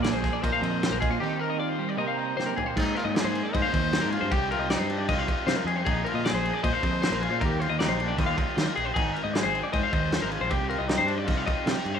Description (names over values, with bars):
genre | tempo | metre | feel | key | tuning
math rock and midwest emo | 155 BPM | 4/4 | straight | unclear | A4 = 441 Hz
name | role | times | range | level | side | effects
clear trumpet | melody | 0.0-11.8 s | D4 to C5 | -32 LUFS | left 1 dB | digital delay
twelve-string electric guitar | accompaniment | 0.0-4.3 s | Bb2 to Bb4 | -32 LUFS | right 10 dB | analog chorus
twelve-string electric guitar | arpeggios | 0.0-12.0 s | G4 to F5 | -30 LUFS | left 7 dB | digital delay
crunchy overdriven guitar | riff | 0.0-12.0 s | Ab2 to Ab4 | -34 LUFS | right 1 dB | spring reverb
growling fingered electric bass | bass | 0.0-12.0 s | Ab1 to Eb3 | -30 LUFS | equal | overdrive
loose indie drum kit | drums | 0.0-11.9 s | crash cymbal, kick drum, ride cymbal, snare drum, toms | -29 LUFS | equal | none
room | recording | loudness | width
small room reverb | rough home demo mix, studio reverb | -24 LUFS | side -7 dB against mid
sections
0.0-2.8 A section; 2.8-12.0 B section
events
break 1.2-2.8; drum fill 2.4-2.8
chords
0.0 Bb7sus4; 1.2 Eb6; 2.0 Cm7; 2.8 Abadd9; 4.3 Cm11; 5.9 Bb7sus4; 7.4 Eb6; 8.9 Abadd9; 10.5 Cm11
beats
0.04 0.43 0.82 | 1.21 1.60 1.99 2.37 | 2.76 3.15 3.54 3.92 | 4.31 4.70 5.08 5.47 | 5.86 6.24 6.63 7.01 | 7.40 7.79 8.18 8.56 | 8.95 9.34 9.72 10.11 | 10.50 10.89 11.27 11.66